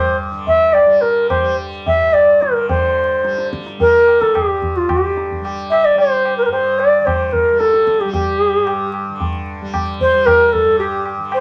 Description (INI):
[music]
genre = indian classical, Hindustani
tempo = 110 BPM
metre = 5/4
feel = straight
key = G raga bhimpalasi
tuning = A4 = 440 Hz
[part]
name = bright reedy bansuri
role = melody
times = 0.0-11.4 s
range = F4 to E5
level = -15 LUFS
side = equal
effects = none
[part]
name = tanpura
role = drone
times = 0.0-11.4 s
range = G2 to G3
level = -30 LUFS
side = equal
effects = none
[part]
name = tabla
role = percussion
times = 0.5-11.4 s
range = none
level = -26 LUFS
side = equal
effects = none
[sound]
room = wet studio reverb, RT60 0.6 s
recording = vinyl crackle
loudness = -15 LUFS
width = mono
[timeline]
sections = 0.0-2.7 A section; 2.7-11.4 B section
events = speeding up 0.0-11.4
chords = none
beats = 0.48 1.03 1.59 2.15 | 2.70 3.25 3.80 4.35 4.90 | 5.44 5.99 6.53 7.07 7.61 | 8.14 8.68 9.21 9.74 10.27 | 10.80 11.32